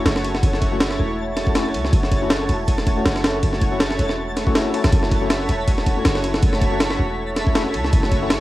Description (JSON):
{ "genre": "drum and bass, jungle", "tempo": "160 BPM", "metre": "4/4", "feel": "swing 55% on 16ths", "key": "F# minor", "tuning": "A4 = 441 Hz", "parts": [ { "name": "lush unison pad", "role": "sustained chords", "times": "0.0-8.4 s", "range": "A3 to C#5", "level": "-25 LUFS", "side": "equal", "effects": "chorus" }, { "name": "overdriven tine electric piano", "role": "stabs", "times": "0.0-8.3 s", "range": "A3 to F#4", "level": "-29 LUFS", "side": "left 6 dB", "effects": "none" }, { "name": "warm 808-style bass", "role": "bass", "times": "0.0-8.4 s", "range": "E1 to C#2", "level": "-24 LUFS", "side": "equal", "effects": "none" }, { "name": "twinkling granular texture", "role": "texture", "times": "0.0-8.4 s", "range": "A5 to B6", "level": "-31 LUFS", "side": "right 2 dB", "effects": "built-in reverb" }, { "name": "jungle sampler-style drum kit", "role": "drums", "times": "0.1-8.4 s", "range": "kick drum, ride cymbal, snare drum", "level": "-20 LUFS", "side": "equal", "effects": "cassette tape" } ], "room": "light reverb", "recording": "home recording on cassette, vinyl crackle", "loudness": "-17 LUFS", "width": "side -16 dB against mid", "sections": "0.0-8.4 A section", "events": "none", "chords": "0.0 F#m7" }